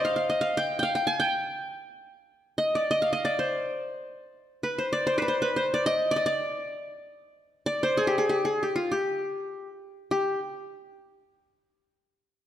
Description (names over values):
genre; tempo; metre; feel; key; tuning
Arabic maqam ensemble; free time; none; none; unclear; A4 = 440 Hz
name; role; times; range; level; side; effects
qanun; solo; 0.0-10.4 s; F4 to Ab5+25c; -25 LUFS; equal; none
room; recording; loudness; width
moderate scoring stage reverb, RT60 1.7 s; none; -25 LUFS; side -11 dB against mid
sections
0.0-10.1 A section; 10.1-11.8 B section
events
none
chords
none